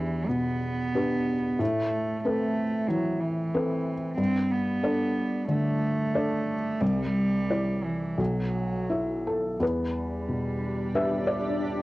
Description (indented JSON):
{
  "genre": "neoclassical piano and strings",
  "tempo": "91 BPM",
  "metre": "4/4",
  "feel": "rubato",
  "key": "E minor",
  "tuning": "A4 = 440 Hz",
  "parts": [
    { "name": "rich cello", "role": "second line", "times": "0.0-11.8 s", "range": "E3 to C4", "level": "-29 LUFS", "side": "right 2 dB", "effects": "cassette tape" },
    { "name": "felt-muted upright piano", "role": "accompaniment", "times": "0.0-11.8 s", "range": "B1 to E5", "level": "-27 LUFS", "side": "left 1 dB", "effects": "cassette tape" },
    { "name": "shimmering ambient pad", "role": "sustained chords", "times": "10.5-11.8 s", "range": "D4 to D5", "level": "-33 LUFS", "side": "left 1 dB", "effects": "chorus, built-in reverb, cassette tape" }
  ],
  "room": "moderate studio reverb, RT60 0.6 s",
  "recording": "home recording on cassette",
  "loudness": "-25 LUFS",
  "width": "side -19 dB against mid",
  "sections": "0.0-9.6 A section; 9.6-11.8 B section",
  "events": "none",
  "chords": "0.0 Em7; 1.6 Amadd9; 4.2 Gsus2; 6.8 Cadd9; 8.2 Bsus4; 9.6 Em7",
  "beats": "0.29 0.94 | 1.59 2.24 2.89 3.53 | 4.18 4.83 5.49 6.15 | 6.81 7.49 8.19 8.91 | 9.61 10.29 10.95 11.62"
}